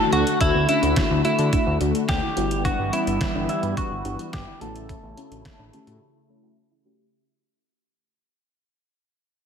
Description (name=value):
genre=synth-pop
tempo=107 BPM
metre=4/4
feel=straight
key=unclear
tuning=A4 = 440 Hz
part: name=twelve-string electric guitar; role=melody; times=0.0-6.5 s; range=E4 to A4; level=-25 LUFS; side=equal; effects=low-pass filter, digital delay
part: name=lush unison pad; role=sustained chords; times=0.0-7.1 s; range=C#3 to F#4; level=-27 LUFS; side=left 2 dB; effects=chorus, phaser, low-pass filter
part: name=soft round pluck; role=arpeggios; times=0.0-7.0 s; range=B3 to F#4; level=-32 LUFS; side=right 2 dB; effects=chorus, low-pass filter, digital delay
part: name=downlifter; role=sound effects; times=0.0-2.6 s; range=none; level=barely audible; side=none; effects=none
part: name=FM electric piano with soft pad layer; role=accompaniment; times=0.1-7.1 s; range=G3 to A4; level=-29 LUFS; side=left 2 dB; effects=chorus, phaser, low-pass filter
part: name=fat analog bass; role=bass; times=0.1-6.0 s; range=G1 to D3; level=-26 LUFS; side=equal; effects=none
part: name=detuned 8-bit digital drum machine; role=drums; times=0.1-6.0 s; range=hi-hat, kick drum, snare drum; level=-27 LUFS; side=equal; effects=overdrive, gated reverb
room=light reverb, digital ambience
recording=none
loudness=-19 LUFS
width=side -7 dB against mid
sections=0.0-7.1 A section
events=fade-out 0.0-7.1; filter sweep 0.0-7.1; break 6.0-7.1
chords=0.0 D; 2.4 G6; 4.6 A